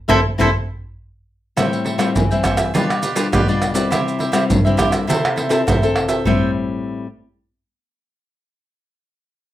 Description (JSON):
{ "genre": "samba and choro", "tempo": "102 BPM", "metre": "4/4", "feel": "straight", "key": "A minor", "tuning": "A4 = 441 Hz", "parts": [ { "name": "cavaquinho", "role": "melody", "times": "0.1-0.5 s", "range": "E4 to C5", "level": "-18 LUFS", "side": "equal", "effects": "none" }, { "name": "cavaquinho", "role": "accompaniment", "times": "0.1-6.5 s", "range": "E4 to G5", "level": "-22 LUFS", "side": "right 3 dB", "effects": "none" }, { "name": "nylon-string guitar", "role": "accompaniment", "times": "0.1-7.1 s", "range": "G2 to A4", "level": "-20 LUFS", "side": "left 4 dB", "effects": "none" }, { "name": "surdo, maracas, pandeiro and tamborim", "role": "percussion", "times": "0.1-6.4 s", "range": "none", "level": "-19 LUFS", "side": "right 2 dB", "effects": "none" } ], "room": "wet studio reverb, RT60 0.5 s", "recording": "rough home demo mix", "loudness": "-15 LUFS", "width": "side -13 dB against mid", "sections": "0.0-1.6 A section; 1.6-6.3 B section; 6.3-8.6 C section", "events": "band accent 0.0-1.6", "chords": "0.0 Am; 1.6 Am7; 2.7 G7/B; 3.9 C; 5.1 Am/C; 6.3 Am7", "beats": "0.40 0.98 | 1.57 2.16 2.74 3.33 | 3.92 4.50 5.09 5.68 | 6.26 6.85" }